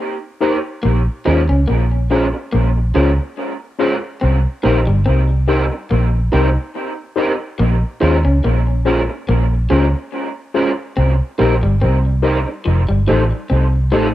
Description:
reggae; 71 BPM; 4/4; swing 55% on 16ths; Bb dorian; A4 = 440 Hz
mellow tine electric piano; accompaniment; 0.4-14.1 s; Db4 to C5; -20 LUFS; left 2 dB; medium stereo tremolo, tape echo
electric guitar through a small old amp; stabs; 0.4-14.1 s; F3 to Bb4; -23 LUFS; right 2 dB; ensemble chorus, tape echo
electric guitar through a small old amp; riff; 0.8-14.1 s; F3 to Eb4; -22 LUFS; left 2 dB; tape echo
vintage muted fingered electric bass; bass; 0.9-14.1 s; F1 to Eb2; -15 LUFS; equal; tube saturation
light reverb; home recording on cassette; -14 LUFS; side -14 dB against mid
0.0-14.1 A section
0.0 Cm7; 0.8 Bbm7; 4.2 Cm7; 7.6 Bbm7; 11.0 Cm7; 12.7 F7

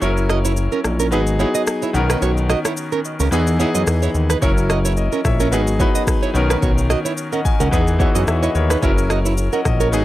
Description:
afrobeats; 109 BPM; 4/4; swing 55% on 16ths; B major; A4 = 440 Hz
bright concert grand piano; accompaniment; 0.0-10.0 s; D#3 to G#5; -21 LUFS; left 2 dB
nylon-string guitar; riff; 0.0-10.0 s; C#4 to D#5; -23 LUFS; right 7 dB; analog delay
fat analog bass; bass; 0.0-10.0 s; F#1 to F#2; -19 LUFS; equal
afro-pop drum kit; drums; 0.0-10.0 s; kick drum, rim click, shaker; -21 LUFS; equal
little or no reverb; dry, gritty hardware recording; -15 LUFS; side -15 dB against mid
0.0-10.0 A section
break 0.0-4.4
0.0 F#7; 1.1 G#m7; 1.9 Bmaj9; 3.3 Emaj7; 4.4 F#7; 5.5 G#m7; 6.3 Bmaj9; 7.7 Emaj7; 8.8 F#7

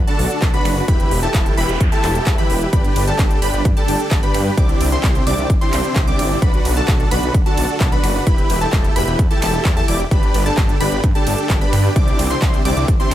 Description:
EDM, festival progressive house; 130 BPM; 4/4; straight; G major; A4 = 440 Hz
detuned saw bass; bass; 0.0-13.1 s; E1 to G2; -21 LUFS; equal; tube saturation, sidechain pumping
plucky unison lead; arpeggios; 0.1-13.1 s; A5 to D6; -26 LUFS; equal; sidechain pumping, tape echo
dense compressed supersaw; riff; 0.1-13.1 s; C4 to D5; -20 LUFS; equal; sidechain pumping, tape echo
big-room dance drum kit; drums; 0.1-13.1 s; finger snaps, handclaps, hi-hat, ride cymbal; -26 LUFS; right 1 dB
electronic kick drum; drums; 0.4-13.0 s; -16 LUFS; equal; overdrive
noise sweep; sound effects; 1.4-2.7 s; -32 LUFS; right 1 dB
little or no reverb; -14 LUFS; side -12 dB against mid
0.0-13.1 A section
noise sweep 1.4-2.7
0.0 Bm; 0.9 Em; 2.7 G; 4.6 Cadd9; 6.4 Bm; 8.3 Em; 10.1 G; 12.0 Cadd9

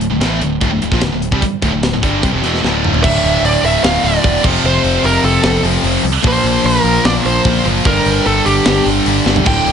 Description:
heavy metal; 149 BPM; 4/4; straight; D minor; A4 = 441 Hz
fuzz guitar; riff; 0.0-9.7 s; D2 to Bb3; -20 LUFS; equal; distortion
heavy high-gain guitar; riff; 0.0-9.7 s; D2 to Bb3; -19 LUFS; right 12 dB; distortion
high-gain distorted guitar; riff; 0.0-9.7 s; D2 to Bb3; -20 LUFS; left 12 dB; distortion
modern bright picked electric bass; bass; 0.0-9.7 s; D1 to C2; -19 LUFS; equal
tight metal drum kit; drums; 0.0-9.7 s; crash cymbal, hi-hat, kick drum, snare drum, toms; -18 LUFS; equal
high-gain lead guitar; melody; 3.0-9.7 s; G4 to G5; -16 LUFS; right 2 dB; distortion, digital delay
studio reverb; nothing above 10.8 kHz; -11 LUFS; side -7 dB against mid
0.0-3.0 A section; 3.0-9.7 B section
drum fill 2.6-3.0, 9.3; half time 3.0-9.7
0.0 Dm; 3.0 D5; 4.4 F; 6.2 Bb5; 7.9 Gm

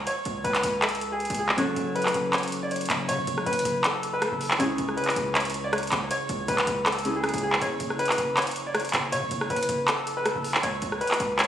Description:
hip hop, trap; 159 BPM; 4/4; half-time; F# minor; A4 = 436 Hz
clear concert grand piano; melody; 0.0-11.5 s; G#4 to D5; -28 LUFS; equal; tape echo
distorted 808-style bass; bass; 0.0-11.5 s; F#1 to C#3; -35 LUFS; equal; distortion
trap drum kit; drums; 0.1-11.5 s; handclaps, hi-hat, rim click; -27 LUFS; equal
Celtic harp; accompaniment; 1.6-9.9 s; C#3 to A4; -32 LUFS; left 2 dB
light reverb; recorded on a phone in the room, studio reverb, compression; -23 LUFS; side -10 dB against mid
0.0-11.5 A section
0.0 Bsus2/C#; 1.6 F#m; 4.6 C#m; 7.6 F#m; 10.6 Bsus2/C#

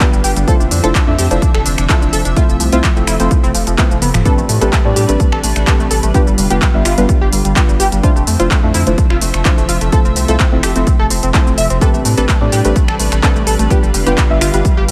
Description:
progressive house; 127 BPM; 4/4; straight; A minor; A4 = 435 Hz
lush unison pad; sustained chords; 0.0-14.9 s; C3 to E5; -24 LUFS; equal; chorus, sidechain pumping
tight sequenced synth; arpeggios; 0.0-14.9 s; F3 to E5; -22 LUFS; equal; chorus, vintage 12-bit sampler grit, sidechain pumping, delay
deep mellow chord stab; stabs; 0.0-14.7 s; G3 to E5; -22 LUFS; equal; chorus, sidechain pumping, delay
electronic kick drum; drums; 0.0-14.7 s; -15 LUFS; equal; overdrive
house drum kit; drums; 0.0-14.9 s; finger snaps, handclaps, hi-hat, shaker, toms; -22 LUFS; equal; overdrive
saturated sub bass; bass; 0.1-14.9 s; F1 to A2; -19 LUFS; equal; sidechain pumping
light reverb; -13 LUFS; mono
0.0-14.9 A section
drum fill 3.9-4.3
0.5 Dm9/F; 2.4 Fmaj7; 4.3 Am11; 6.1 G7; 8.0 Dm9/F; 9.9 Fmaj7; 11.8 Am11; 13.7 G7

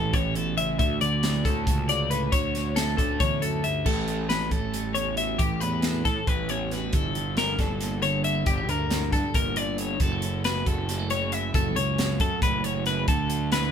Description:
math rock and midwest emo; 273 BPM (eighths); 7/8; straight; A4 = 438 Hz
twelve-string electric guitar; accompaniment; 0.0-13.7 s; D2 to A4; -31 LUFS; right 6 dB
twelve-string electric guitar; arpeggios; 0.0-13.7 s; G4 to E5; -28 LUFS; left 5 dB
fuzz picked electric bass; bass; 0.0-13.7 s; F#1 to A2; -29 LUFS; equal; overdrive
crisp fusion drum kit; drums; 0.1-13.6 s; crash cymbal, hi-hat, kick drum, snare drum; -28 LUFS; equal
light reverb; band playing live in one room; -23 LUFS; side -8 dB against mid
0.0-3.9 A section; 3.9-13.7 B section
0.0 A7; 0.8 Dmaj7; 3.9 A7; 6.9 Gm6; 10.0 F#m7; 13.1 D6

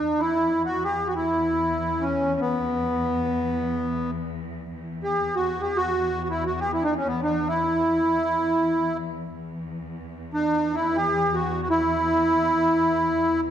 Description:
Arabic maqam ensemble; free time; E maqam rast; A4 = 440 Hz
accordion; melody; 0.0-13.4 s; B3 to G#4-50c; -22 LUFS; right 1 dB; light tremolo tuning
clear studio cello section; drone; 0.0-13.5 s; E2; -32 LUFS; left 2 dB
wet scoring stage reverb, RT60 1.5 s; -22 LUFS; side -9 dB against mid
0.0-13.5 A section

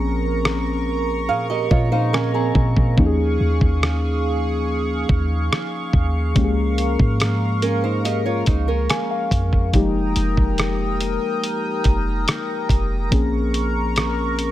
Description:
contemporary R&B; 71 BPM; 4/4; straight; A4 = 440 Hz
muted felt-like synth keys; accompaniment; 0.0-14.5 s; F3 to Bb5; -24 LUFS; left 2 dB; chorus
chorused pulse-width pad; sustained chords; 0.0-14.5 s; Ab4 to Eb6; -26 LUFS; right 1 dB
clean 808-style bass; bass; 0.0-14.5 s; F1 to Bb2; -22 LUFS; equal
dusty soul sampler-style drum kit; drums; 0.5-14.5 s; hi-hat, kick drum, rim click; -20 LUFS; equal
nylon-string guitar; arpeggios; 1.3-9.7 s; C4 to F5; -24 LUFS; right 6 dB
digital ambience; -18 LUFS; side -13 dB against mid
0.0-14.5 A section
synth keys fill 1.3-3.0, 8.5-9.7
0.0 Bbm9; 3.0 Eb9sus4; 6.4 Db6; 9.7 Fm11; 13.1 Bbm9

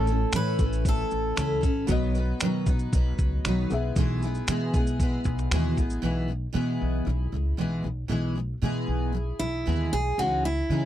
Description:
acoustic pop; 116 BPM; 4/4; straight; E major; A4 = 440 Hz
picked steel-string acoustic guitar; melody; 0.0-1.6, 9.4-10.9 s; E4 to B4; -28 LUFS; right 1 dB
felt-muted upright piano; accompaniment; 0.0-6.1 s; B3 to E5; -37 LUFS; left 5 dB
picked steel-string acoustic guitar; accompaniment; 0.0-10.9 s; A2 to B4; -29 LUFS; equal; double-tracked left and right
upright bass; bass; 0.0-10.9 s; A1 to C#3; -28 LUFS; equal
dusty soul sampler-style drum kit; drums; 0.1-6.0 s; finger snaps, kick drum, shaker; -26 LUFS; equal
little or no reverb; dry, close 1970s-style studio recording; -24 LUFS; side -12 dB against mid
0.0-6.0 A section; 6.0-10.2 B section
0.0 A; 1.9 B; 3.7 E/B; 10.2 C#madd9

